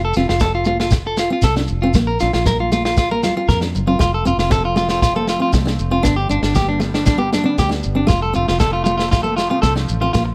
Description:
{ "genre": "highlife guitar band", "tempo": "117 BPM", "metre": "4/4", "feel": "straight", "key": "F major", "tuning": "A4 = 440 Hz", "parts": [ { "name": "fingerpicked steel-string acoustic guitar", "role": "accompaniment", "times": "0.0-10.3 s", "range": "A3 to D4", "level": "-25 LUFS", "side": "equal", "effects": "none" }, { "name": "clean electric guitar", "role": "arpeggios", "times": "0.0-10.3 s", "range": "D4 to Bb4", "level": "-22 LUFS", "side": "equal", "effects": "tape echo" }, { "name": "fingered electric bass", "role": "bass", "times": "0.0-10.3 s", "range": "F1 to F2", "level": "-24 LUFS", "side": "equal", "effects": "none" }, { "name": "shekere", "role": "percussion", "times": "0.1-10.3 s", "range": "none", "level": "-24 LUFS", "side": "equal", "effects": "none" }, { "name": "warm soul drum kit", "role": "drums", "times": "0.2-10.3 s", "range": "kick drum, snare drum", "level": "-22 LUFS", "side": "equal", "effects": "none" }, { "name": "congas", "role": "percussion", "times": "0.2-10.2 s", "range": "none", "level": "-29 LUFS", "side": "equal", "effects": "none" }, { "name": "phased analog pad", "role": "sustained chords", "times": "4.0-10.3 s", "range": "C3 to C4", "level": "-31 LUFS", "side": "equal", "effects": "phaser, chorus" } ], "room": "light reverb, studio reverb", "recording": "none", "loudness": "-17 LUFS", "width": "mono", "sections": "0.0-10.3 A section", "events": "drum fill 3.5-4.0", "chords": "0.0 F; 1.9 Bb; 4.0 F; 6.1 G; 8.1 F" }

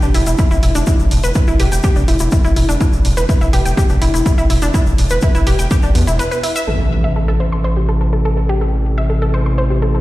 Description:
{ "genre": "melodic techno", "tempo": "124 BPM", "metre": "4/4", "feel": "straight", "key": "A minor", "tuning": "A4 = 439 Hz", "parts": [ { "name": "analog pluck", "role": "arpeggios", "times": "0.0-10.0 s", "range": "B3 to C6", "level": "-20 LUFS", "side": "equal", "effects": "chorus, sidechain pumping, ping-pong delay" }, { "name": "gritty driven synth bass", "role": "bass", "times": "0.0-10.0 s", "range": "E1 to E2", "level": "-16 LUFS", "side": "equal", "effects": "sidechain pumping" }, { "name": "tube shaker", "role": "percussion", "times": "0.0-6.7 s", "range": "none", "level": "-29 LUFS", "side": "left 4 dB", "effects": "none" }, { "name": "electronic hi-hat", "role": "drums", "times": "0.1-6.7 s", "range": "none", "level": "-28 LUFS", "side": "right 2 dB", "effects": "sidechain pumping on hats" }, { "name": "electronic kick drum", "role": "drums", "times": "0.4-5.8 s", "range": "none", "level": "-14 LUFS", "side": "equal", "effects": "overdrive" }, { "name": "warm analog pad", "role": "sustained chords", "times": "6.7-10.0 s", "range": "C3 to E4", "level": "-22 LUFS", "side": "equal", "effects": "chorus, sidechain pumping" }, { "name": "impact", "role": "sound effects", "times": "6.7-8.6 s", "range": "none", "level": "-23 LUFS", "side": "equal", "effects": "none" } ], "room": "light reverb, digital ambience", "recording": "played on a big sound system in a bare room, stone room reverb", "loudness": "-12 LUFS", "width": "side -17 dB against mid", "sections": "0.0-6.7 A section; 6.7-10.0 B section", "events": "break 6.2-6.7; impact 6.7-8.6; filter sweep on analog synth pad 6.7-10.0", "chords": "0.0 N.C.; 6.7 Am" }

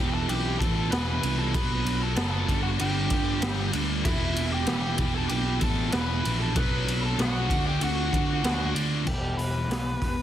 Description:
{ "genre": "quiet-loud alternative rock", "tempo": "96 BPM", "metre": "4/4", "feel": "straight", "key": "E minor", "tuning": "A4 = 440 Hz", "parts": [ { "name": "biting lead guitar", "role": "melody", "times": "0.0-10.2 s", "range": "E4 to B5", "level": "-33 LUFS", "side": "equal", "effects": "overdrive" }, { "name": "string machine, full ensemble", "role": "sustained chords", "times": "0.0-9.1 s", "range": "D3 to D5", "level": "-41 LUFS", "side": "equal", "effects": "none" }, { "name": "cranked stack guitar", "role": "riff", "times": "0.0-9.0 s", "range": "E2 to D4", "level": "-32 LUFS", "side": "right 11 dB", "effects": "overdrive" }, { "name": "scooped high-gain guitar", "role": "riff", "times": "0.0-9.1 s", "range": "E2 to D4", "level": "-32 LUFS", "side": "left 12 dB", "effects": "distortion" }, { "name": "picked electric bass", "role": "bass", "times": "0.0-10.2 s", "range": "E1 to D3", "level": "-29 LUFS", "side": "equal", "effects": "none" }, { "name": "raw garage drum kit", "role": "drums", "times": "0.3-10.2 s", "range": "crash cymbal, hi-hat, kick drum, ride cymbal, snare drum", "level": "-28 LUFS", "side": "equal", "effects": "none" }, { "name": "twelve-string electric guitar", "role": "arpeggios", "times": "9.1-10.2 s", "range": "E2 to G4", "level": "-33 LUFS", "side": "left 4 dB", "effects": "none" } ], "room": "light reverb, small room ambience", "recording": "dense, heavily limited modern master", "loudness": "-24 LUFS", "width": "side -11 dB against mid", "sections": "0.0-9.1 A section; 9.1-10.2 B section", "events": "none", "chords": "0.0 Em; 1.5 Bm7; 2.5 Gadd9; 4.0 Em; 6.6 Bm7; 7.5 D; 9.1 Em" }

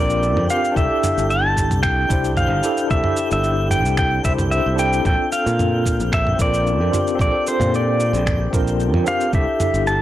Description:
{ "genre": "sunset chillout", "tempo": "112 BPM", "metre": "4/4", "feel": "swing 53% on 16ths", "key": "C mixolydian", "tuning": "A4 = 439 Hz", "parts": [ { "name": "pedal steel guitar", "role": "melody", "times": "0.0-10.0 s", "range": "C5 to A5", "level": "-21 LUFS", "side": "equal", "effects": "analog delay" }, { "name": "tine electric piano", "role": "accompaniment", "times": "0.0-10.0 s", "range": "C4 to C5", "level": "-23 LUFS", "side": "equal", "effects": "medium stereo tremolo, auto-pan" }, { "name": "modern bright fingered electric bass", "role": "bass", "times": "0.0-10.0 s", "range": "G1 to Bb2", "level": "-21 LUFS", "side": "equal", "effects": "none" }, { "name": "twinkling granular texture", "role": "texture", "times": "0.0-10.0 s", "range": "G5 to G6", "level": "-34 LUFS", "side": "left 1 dB", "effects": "built-in reverb" }, { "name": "dusty soul sampler-style drum kit", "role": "drums", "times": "0.1-10.0 s", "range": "cabasa, finger snaps, toms", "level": "-26 LUFS", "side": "equal", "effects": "none" }, { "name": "electronic kick drum", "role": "drums", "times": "0.8-9.4 s", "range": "none", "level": "-22 LUFS", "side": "equal", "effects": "none" } ], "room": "light reverb, digital ambience", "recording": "dry, gritty hardware recording, transformer saturation", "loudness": "-16 LUFS", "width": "side -13 dB against mid", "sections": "0.0-10.0 A section", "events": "none", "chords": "0.0 Bbmaj7; 0.8 C6; 5.0 Bbmaj7; 9.3 C6" }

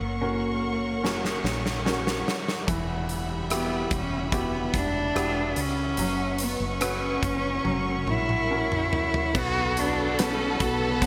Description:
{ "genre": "pop ballad", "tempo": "72 BPM", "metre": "4/4", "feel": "straight", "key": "unclear", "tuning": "A4 = 440 Hz", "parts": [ { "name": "rich cello", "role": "melody", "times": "0.0-11.1 s", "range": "A#3 to F#4", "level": "-31 LUFS", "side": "equal", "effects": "none" }, { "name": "clear baby grand piano", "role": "accompaniment", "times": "0.0-11.1 s", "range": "E3 to B4", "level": "-34 LUFS", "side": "equal", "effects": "subtle chorus" }, { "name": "warm studio string section", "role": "sustained chords", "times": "0.0-11.1 s", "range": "G3 to C#6", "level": "-36 LUFS", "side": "equal", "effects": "none" }, { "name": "woody fretless electric bass", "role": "bass", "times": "0.0-11.1 s", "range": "E1 to C#2", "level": "-35 LUFS", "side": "equal", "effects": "none" }, { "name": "huge arena drum kit", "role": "drums", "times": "1.0-11.1 s", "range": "crash cymbal, hi-hat, kick drum, rim click, snare drum, toms", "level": "-32 LUFS", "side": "equal", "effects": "none" }, { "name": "warm studio violin section", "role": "second line", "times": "9.3-11.1 s", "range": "A4", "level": "-34 LUFS", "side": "equal", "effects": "digital delay" } ], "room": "moderate lush hall reverb, RT60 2.2 s", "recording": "bright 1980s-style digital production", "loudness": "-26 LUFS", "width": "mono", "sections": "0.0-9.3 A section; 9.3-11.1 B section", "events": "drum fill 1.0-2.7, 7.6-9.3", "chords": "0.0 F#; 2.7 Emadd9; 6.0 F#sus4; 7.6 F#; 9.3 B5" }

